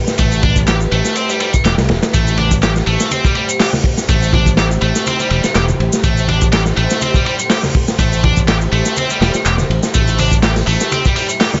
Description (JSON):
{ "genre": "breakbeat, breaks", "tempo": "123 BPM", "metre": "4/4", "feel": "swing 55% on 16ths", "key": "A minor", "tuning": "A4 = 439 Hz", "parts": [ { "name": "deep dark ambient pad", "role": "sustained chords", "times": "0.0-11.6 s", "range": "A3 to E5", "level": "-26 LUFS", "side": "equal", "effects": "chorus, built-in reverb, vintage 12-bit sampler grit, sidechain pumping" }, { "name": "crunchy breakbeat drum kit", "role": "drums", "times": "0.1-11.6 s", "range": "hi-hat, kick drum, ride cymbal, snare drum", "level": "-18 LUFS", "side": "equal", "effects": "none" }, { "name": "punchy analog drum machine", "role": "drums", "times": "0.1-11.6 s", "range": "handclaps, hi-hat, shaker", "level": "-25 LUFS", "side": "equal", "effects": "none" }, { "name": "heavy high-gain guitar", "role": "riff", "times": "0.2-11.5 s", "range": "G3 to G4", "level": "-21 LUFS", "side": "equal", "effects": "distortion, digital delay" }, { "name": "fingered electric bass", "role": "bass", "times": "0.2-10.8 s", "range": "E1 to C2", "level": "-18 LUFS", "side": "equal", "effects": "none" }, { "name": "congas", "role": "percussion", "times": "2.4-11.6 s", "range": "none", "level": "-26 LUFS", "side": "equal", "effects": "none" } ], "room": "small room ambience", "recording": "nothing above 7.7 kHz", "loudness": "-14 LUFS", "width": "mono", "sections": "0.0-11.6 A section", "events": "none", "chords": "0.0 Am7" }